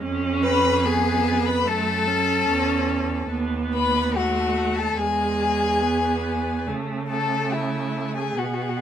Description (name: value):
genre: classical, slow romantic movement for string quartet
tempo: 72 BPM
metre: 4/4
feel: rubato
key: unclear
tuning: A4 = 438 Hz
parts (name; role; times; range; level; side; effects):
- rich viola; accompaniment; 0.0-8.8 s; G#3 to C#4; -26 LUFS; right 3 dB; none
- rich cello; bass; 0.0-8.8 s; D#2 to C#3; -27 LUFS; right 3 dB; none
- rich violin; second line; 0.4-8.8 s; E4 to B4; -25 LUFS; left 2 dB; none
- rich violin; melody; 0.5-8.8 s; E5 to B5; -27 LUFS; left 7 dB; none
room: moderate stone room reverb, RT60 1.1 s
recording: minimal, uncompressed stereo recording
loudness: -20 LUFS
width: side -9 dB against mid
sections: 0.0-8.8 A section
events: none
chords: 0.0 C#7/E#; 1.7 F#m; 3.3 B7/D#; 5.0 E; 6.7 A/C#